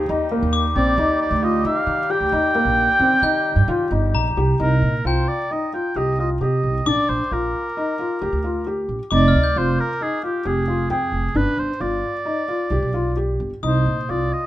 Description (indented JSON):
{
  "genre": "contemporary instrumental, chamber music in an uneven meter",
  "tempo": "133 BPM",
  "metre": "5/4",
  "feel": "straight",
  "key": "C minor",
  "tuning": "A4 = 440 Hz",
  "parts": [
    { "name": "warm woodwind section", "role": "sustained chords", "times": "0.0-4.6 s", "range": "G3 to G4", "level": "-28 LUFS", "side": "left 5 dB", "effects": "none" },
    { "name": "felt-muted upright piano", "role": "arpeggios", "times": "0.0-14.4 s", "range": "Bb3 to G5", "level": "-23 LUFS", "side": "left 2 dB", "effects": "none" },
    { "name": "upright bass", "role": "bass", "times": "0.0-14.3 s", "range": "F1 to Eb3", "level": "-22 LUFS", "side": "right 2 dB", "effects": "none" },
    { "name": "glockenspiel with brass mallets", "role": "texture", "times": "0.5-14.5 s", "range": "G5 to G6", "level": "-29 LUFS", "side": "left 5 dB", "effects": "none" },
    { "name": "warm oboe", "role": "melody", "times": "0.8-14.5 s", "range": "G4 to G5", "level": "-23 LUFS", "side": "right 1 dB", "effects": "none" }
  ],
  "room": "light reverb",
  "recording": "close, detailed microphones",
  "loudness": "-18 LUFS",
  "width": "side -14 dB against mid",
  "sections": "0.0-4.6 A section; 4.6-14.5 B section",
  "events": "none",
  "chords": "0.1 Ebmaj7; 4.6 Cm7; 6.9 Bb; 9.1 Fm7; 11.4 G7; 13.6 Cm7",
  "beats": "| 0.09 0.54 0.98 1.43 1.88 | 2.33 2.77 3.23 3.68 4.14 | 4.60 5.05 5.50 5.96 6.41 | 6.86 7.32 7.77 8.22 8.66 | 9.11 9.56 10.01 10.46 10.91 | 11.36 11.81 12.26 12.71 13.17 | 13.63 14.09"
}